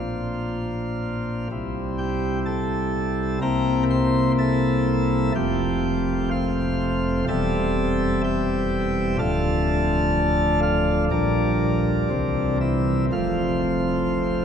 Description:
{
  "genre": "classical, chorale-style piece for pipe organ",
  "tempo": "62 BPM",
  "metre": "4/4",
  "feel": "rubato",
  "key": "unclear",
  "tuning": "A4 = 437 Hz",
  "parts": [
    { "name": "chamber organ, principal chorus", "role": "solo", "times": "0.0-14.4 s", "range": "D1 to C6", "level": "-20 LUFS", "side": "equal", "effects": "none" }
  ],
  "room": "wet cathedral reverb, RT60 6.8 s",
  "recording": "dark, warm production",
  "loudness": "-20 LUFS",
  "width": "side -8 dB against mid",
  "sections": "0.0-14.4 A section",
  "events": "none",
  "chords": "0.0 Bb; 1.5 C; 3.4 C6; 5.4 F; 7.3 C/E; 9.2 Dm; 11.1 Gm7/Bb; 12.1 C; 13.1 F"
}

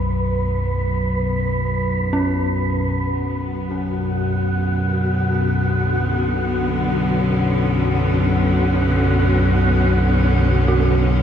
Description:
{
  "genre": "dark ambient drone",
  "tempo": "free time",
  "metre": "none",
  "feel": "none",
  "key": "B minor",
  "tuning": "A4 = 442 Hz",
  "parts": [
    { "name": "rich studio cello section", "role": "sustained chords", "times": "0.0-11.2 s", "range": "B2 to C#4", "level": "-24 LUFS", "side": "equal", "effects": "none" },
    { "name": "dark detuned synth bell", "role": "arpeggios", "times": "0.0-11.2 s", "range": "C#4 to F#4", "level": "-27 LUFS", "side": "right 2 dB", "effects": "chorus, analog delay" },
    { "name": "analog drone", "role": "drone", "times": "0.0-11.2 s", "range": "B1 to F#2", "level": "-18 LUFS", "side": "equal", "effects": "chorus" },
    { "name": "wind-like tuned noise texture", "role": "texture", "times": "0.0-11.2 s", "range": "F#4 to B4", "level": "-25 LUFS", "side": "equal", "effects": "built-in reverb" }
  ],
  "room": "moderate plate reverb, RT60 3.4 s",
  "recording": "dreamy mix soaked in reverb",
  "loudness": "-17 LUFS",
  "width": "side -9 dB against mid",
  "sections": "0.0-2.9 A section; 2.9-11.2 B section",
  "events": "filter sweep on synth drone 0.0-2.9",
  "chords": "0.0 F#m7/B; 2.9 Bm"
}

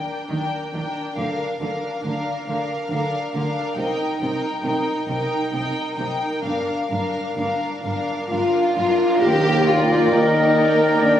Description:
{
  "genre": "cinematic, emotional film score for orchestra",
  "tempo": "64-70 BPM",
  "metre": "3/4",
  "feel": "rubato",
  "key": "unclear",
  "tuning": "A4 = 440 Hz",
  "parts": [
    { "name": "rich studio violin section", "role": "melody", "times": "0.0-11.2 s", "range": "F5 to G5", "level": "-28 LUFS", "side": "left 3 dB", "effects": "none" },
    { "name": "dark studio violin section", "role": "second line", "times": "0.0-11.2 s", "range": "D4 to Bb4", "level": "-26 LUFS", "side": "equal", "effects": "none" },
    { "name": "dark studio viola section", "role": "accompaniment", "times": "0.0-11.2 s", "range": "D4 to D5", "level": "-27 LUFS", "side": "equal", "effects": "none" },
    { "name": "dark chamber double bass section", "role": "bass", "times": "0.3-11.2 s", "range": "G1 to Eb2", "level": "-31 LUFS", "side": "right 3 dB", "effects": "none" },
    { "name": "dark studio cello section", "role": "bass", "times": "0.3-11.2 s", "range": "Eb2 to Eb3", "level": "-27 LUFS", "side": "right 2 dB", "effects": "none" },
    { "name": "cymbal swell and tam-tam", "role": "percussion", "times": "6.4-11.2 s", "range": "none", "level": "-31 LUFS", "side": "equal", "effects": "none" },
    { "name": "mellow French horn section", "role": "sustained chords", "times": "8.3-11.2 s", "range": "D4 to G4", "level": "-19 LUFS", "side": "left 2 dB", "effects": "none" },
    { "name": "clear oboe", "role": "second line", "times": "9.2-11.2 s", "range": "Bb4", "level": "-26 LUFS", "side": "left 1 dB", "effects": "none" },
    { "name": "large flute ensemble", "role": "second line", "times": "9.2-11.2 s", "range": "G5", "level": "-30 LUFS", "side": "equal", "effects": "none" },
    { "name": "warm clarinet", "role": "second line", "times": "10.1-11.2 s", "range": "Bb4", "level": "-24 LUFS", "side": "equal", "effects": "none" }
  ],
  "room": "wet scoring stage reverb, RT60 1.4 s",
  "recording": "recorded on a phone in the room, studio reverb",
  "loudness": "-19 LUFS",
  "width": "side -10 dB against mid",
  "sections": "0.0-9.2 A section; 9.2-11.2 B section",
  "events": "band accent 9.2-10.1",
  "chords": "0.0 Ebmaj7; 1.2 Bb/D; 3.8 Cm7; 6.4 Gm7; 9.2 Ebmaj7"
}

